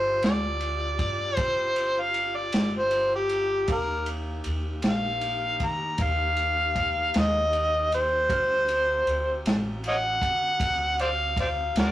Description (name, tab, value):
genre	slow blues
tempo	52 BPM (dotted quarters)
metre	12/8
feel	straight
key	G minor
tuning	A4 = 440 Hz
part	overdriven harmonica	melody	0.0-11.9 s	F#4 to Bb5	-24 LUFS	equal	none
part	clear upright piano	accompaniment	0.0-11.9 s	F#4 to E#6	-41 LUFS	right 4 dB	none
part	mellow tonewheel organ	sustained chords	0.0-11.9 s	G3 to G4	-40 LUFS	left 1 dB	slow rotary speaker
part	upright bass	bass	0.0-11.9 s	G1 to Eb3	-33 LUFS	equal	none
part	vintage drum kit	drums	0.2-11.9 s	kick drum, ride cymbal, snare drum	-30 LUFS	equal	none
room	moderate studio reverb, RT60 0.6 s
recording	rough rehearsal-room recording, tube saturation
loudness	-23 LUFS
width	side -14 dB against mid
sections	0.0-11.9 A section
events	harmonica solo 0.0-11.9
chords	0.0 Gm7; 3.7 Ebmaj7; 8.3 D7#9